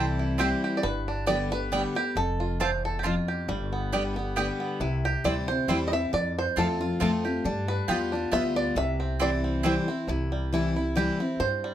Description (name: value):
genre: bluegrass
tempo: 136 BPM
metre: 3/4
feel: swing 54% on 8ths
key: C major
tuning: A4 = 441 Hz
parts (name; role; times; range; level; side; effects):
- bluegrass banjo; melody; 0.0-11.7 s; G3 to E5; -29 LUFS; right 2 dB; none
- picked steel-string acoustic guitar; accompaniment; 0.0-11.7 s; E2 to G4; -28 LUFS; left 2 dB; none
- mandolin; stabs; 0.0-9.7 s; B3 to A5; -31 LUFS; right 4 dB; none
- upright bass; bass; 0.0-11.7 s; F1 to G2; -32 LUFS; equal; none
room: light reverb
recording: close, detailed microphones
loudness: -25 LUFS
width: side -11 dB against mid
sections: 0.0-10.1 A section; 10.1-11.7 A section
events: five-string banjo solo 0.0-11.7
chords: 0.0 C; 0.8 G; 2.2 F; 3.5 G; 4.8 C; 6.1 F; 7.4 G7; 8.8 C